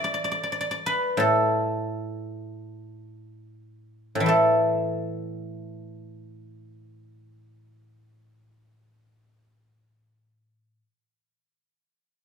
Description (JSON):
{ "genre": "chinese traditional, Chinese solo plucked strings", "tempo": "36-47 BPM", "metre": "4/4", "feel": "rubato", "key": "unclear", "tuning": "A4 = 440 Hz", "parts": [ { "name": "guzheng", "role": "solo", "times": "0.0-10.8 s", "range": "A2 to G5", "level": "-24 LUFS", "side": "equal", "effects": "none" } ], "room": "moderate recital hall reverb, RT60 1.4 s", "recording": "minimal, uncompressed stereo recording", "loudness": "-22 LUFS", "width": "side -7 dB against mid", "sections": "0.0-4.3 A section; 4.3-10.8 B section", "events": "slowing down 0.0-4.3", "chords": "none" }